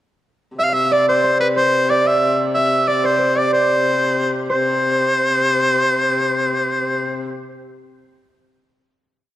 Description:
medieval dance; 122 BPM (dotted quarters); 6/8; straight; C major; A4 = 440 Hz
edgy shawm; melody; 0.6-7.2 s; B4 to F5; -17 LUFS; equal
concert harp; second line; 0.6-7.7 s; B4 to E5; -19 LUFS; right 2 dB
warm hurdy-gurdy; drone; 0.6-7.3 s; C3; -24 LUFS; left 2 dB
wet scoring stage reverb, RT60 1.9 s; worn, warbling old tape, cassette tape, warbly pitch drift; -15 LUFS; side -13 dB against mid
0.6-4.5 A section; 4.5-6.5 final note

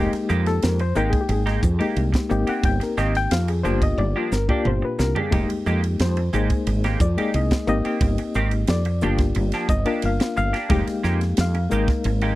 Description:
electric jazz fusion; 89 BPM; 4/4; straight; A4 = 440 Hz
barky reed electric piano; accompaniment; 0.0-12.4 s; Ab3 to G5; -24 LUFS; left 3 dB; medium tremolo
semi-hollow electric guitar; stabs; 0.0-12.4 s; Eb3 to G4; -28 LUFS; right 4 dB; analog chorus
woody fretless electric bass; bass; 0.0-12.3 s; F1 to F2; -22 LUFS; right 1 dB; analog chorus
crisp fusion drum kit; drums; 0.1-12.4 s; hi-hat, kick drum, ride cymbal, snare drum, toms; -24 LUFS; right 1 dB
small room ambience; dry, close 1970s-style studio recording; -19 LUFS; side -17 dB against mid
0.0-12.4 A section
drum fill 4.0-5.3
0.0 Fm11; 2.3 Abmaj9; 3.7 Gm7; 5.3 Fm11; 7.7 Abmaj9; 9.0 Gm7; 10.7 Fm11

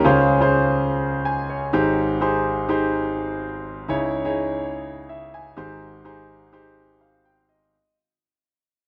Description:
pop; 125 BPM; 4/4; straight; Ab major; A4 = 440 Hz
clear concert grand piano; accompaniment; 0.0-7.9 s; Ab1 to Ab5; -22 LUFS; equal
moderate plate reverb, RT60 2.2 s; -22 LUFS; mono
0.1-7.7 A section
fade-out 0.1-7.7
0.1 Dbmaj7; 1.7 Abmaj7; 3.9 Dbmadd9; 5.6 Abmaj7

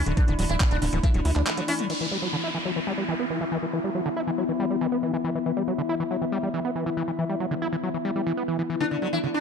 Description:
psychedelic trance; 139 BPM; 4/4; straight; A4 = 443 Hz
pulsing gated texture; sustained chords; 0.0-9.4 s; E3 to E4; -32 LUFS; left 2 dB; chorus, built-in reverb, sidechain pumping
tight sequencer bass; bass; 0.0-1.4 s; D1 to D2; -25 LUFS; equal
warbly tape-like pad; texture; 0.0-9.4 s; A3 to B5; -31 LUFS; left 4 dB; chorus, built-in reverb, sidechain pumping
sitar; melody; 0.1-1.8, 8.8-9.4 s; D3 to E4; -30 LUFS; left 1 dB; phaser, sidechain pumping, dub echo
overdriven acid bass; riff; 0.1-9.4 s; C#3 to E4; -29 LUFS; moving between left 2 dB and right 4 dB; distortion, auto-pan, sidechain pumping, digital delay
garage drum kit; drums; 0.1-2.0 s; crash cymbal, handclaps, hi-hat; -32 LUFS; right 1 dB; studio reverb
electronic kick drum; drums; 0.2-1.1 s; -21 LUFS; equal; studio reverb
downlifter; sound effects; 1.9-5.4 s; -34 LUFS; equal
moderate lush hall reverb, RT60 2.2 s; dark, warm production; -24 LUFS; side -6 dB against mid
0.0-1.9 A section; 1.9-9.4 B section
drop 0.0-1.9; break 1.5-1.9; filter sweep on acid bass 1.9-9.4; filter sweep on synth texture 1.9-9.4
0.0 D5; 1.9 E5; 8.8 D5

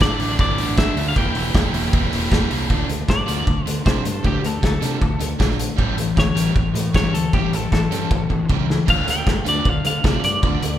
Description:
indie rock; 155 BPM; 4/4; straight; D minor; A4 = 440 Hz
twelve-string electric guitar; melody; 0.0-10.8 s; G4 to G5; -24 LUFS; left 1 dB
biting overdriven guitar; riff; 0.0-10.8 s; A2 to G4; -25 LUFS; left 6 dB
overdriven semi-hollow guitar; riff; 0.0-10.7 s; A2 to G4; -27 LUFS; right 6 dB
fuzz fingered electric bass; bass; 0.0-10.8 s; E1 to D3; -25 LUFS; equal; overdrive
loose indie drum kit; drums; 0.0-10.7 s; crash cymbal, hi-hat, kick drum, snare drum; -20 LUFS; equal
moderate recital hall reverb, RT60 1.5 s; recorded in a church or concert hall; -17 LUFS; side -11 dB against mid
0.0-2.7 A section; 2.7-10.8 B section
clean electric guitar solo 2.7-10.8; drum fill 8.1-8.9
0.0 Asus4; 1.2 Edim; 2.7 Dm; 5.8 A7; 8.9 Dm

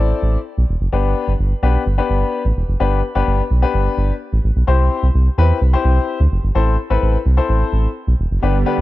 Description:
pop; 128 BPM; 4/4; straight; A4 = 438 Hz
warm baby grand piano; accompaniment; 0.0-8.8 s; B3 to D5; -20 LUFS; left 6 dB; cassette tape
round analog bass; bass; 0.0-8.8 s; E1 to E2; -15 LUFS; right 1 dB
warm studio string section; sustained chords; 8.4-8.8 s; D3 to B3; -22 LUFS; right 9 dB; stereo widening, cassette tape
small room ambience; home recording on cassette; -14 LUFS; side -16 dB against mid
0.0-8.4 A section
0.0 Am; 0.9 G; 4.7 C; 6.6 Am

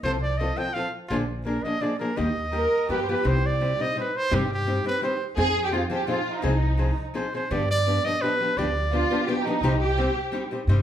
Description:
mexican folk, mariachi; 169 BPM; 3/4; straight; Eb major, C harmonic minor from 3.2 s; A4 = 442 Hz
bright trumpet; melody; 0.0-9.3 s; F4 to G5; -27 LUFS; right 2 dB
nylon-string guitar; accompaniment; 0.0-10.8 s; G2 to A4; -28 LUFS; left 2 dB
upright bass; bass; 0.0-10.8 s; Bb1 to G2; -26 LUFS; equal
dark symphonic violin section; second line; 2.5-3.2, 5.4-10.5 s; Eb4 to Bb4; -26 LUFS; right 2 dB
wet large studio reverb, RT60 0.8 s; band playing live in one room; -22 LUFS; side -10 dB against mid
0.0-3.2 A section; 3.2-10.8 B section
0.0 F/C; 1.1 Bb7; 2.2 Eb; 2.9 G7; 3.2 Cm; 5.4 Fm7; 7.5 G7; 9.6 Cm

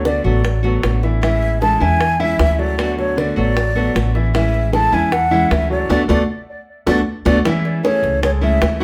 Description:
latin, Cuban son and guajira; 154 BPM; 4/4; straight; A major; A4 = 440 Hz
breathy mellow concert flute; melody; 0.0-8.8 s; C#5 to A5; -22 LUFS; equal; tape echo
nylon-string guitar; accompaniment; 0.0-8.8 s; D3 to F#4; -24 LUFS; equal
warm grand piano; arpeggios; 0.0-8.8 s; D3 to F#5; -25 LUFS; equal
upright bass; bass; 0.0-8.8 s; A1 to E2; -21 LUFS; equal
bongos; percussion; 0.1-8.8 s; -25 LUFS; equal
moderate studio reverb, RT60 0.7 s; heard from further back in the room; -17 LUFS; mono
0.0-7.5 A section; 7.5-8.8 B section
drum fill 5.9-7.5; band accent 5.9-7.5
0.0 D6; 1.2 Amaj7; 2.8 D6; 4.3 Amaj7; 5.9 D6; 7.5 Amaj7

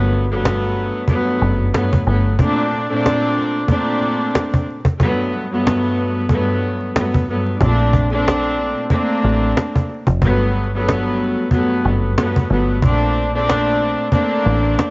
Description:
hip hop, boom-bap hip-hop; 92 BPM; 4/4; swing 57% on 16ths; A4 = 439 Hz
warm studio string section; accompaniment; 0.0-14.9 s; G2 to D4; -17 LUFS; equal; cassette tape
deep dub fingered electric bass; bass; 0.0-2.4, 7.6-14.8 s; F1 to Bb1; -18 LUFS; equal
cajon; drums; 0.1-14.9 s; -17 LUFS; equal; cassette tape
little or no reverb; home recording on cassette, vinyl crackle, nothing above 7.7 kHz; -15 LUFS; side -26 dB against mid
0.0-14.9 A section
0.0 Gmaj9; 2.4 Bbmaj9; 5.0 Gmaj9; 7.6 Bbmaj9; 10.2 Gmaj9; 12.8 Bbmaj9

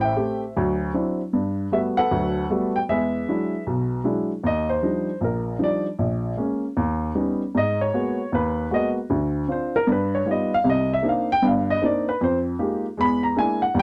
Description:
solo jazz; 155 BPM; 4/4; swing 65% on 8ths; A4 = 440 Hz
warm upright piano; solo; 0.0-13.8 s; G1 to B5; -23 LUFS; equal
light reverb; dry, close 1970s-style studio recording; -23 LUFS; mono
0.0-4.4 A section; 4.4-13.8 B section
upright piano solo 4.4-13.8
0.0 Am7; 0.6 D9; 1.3 Gmaj9; 2.9 E9; 4.4 Ebmaj9; 6.0 Bbm7; 6.8 Eb7b13; 7.5 Abm9; 9.1 Dm7; 9.9 Gaug7; 10.6 Cm9; 12.2 Fm11; 13.0 E7#11

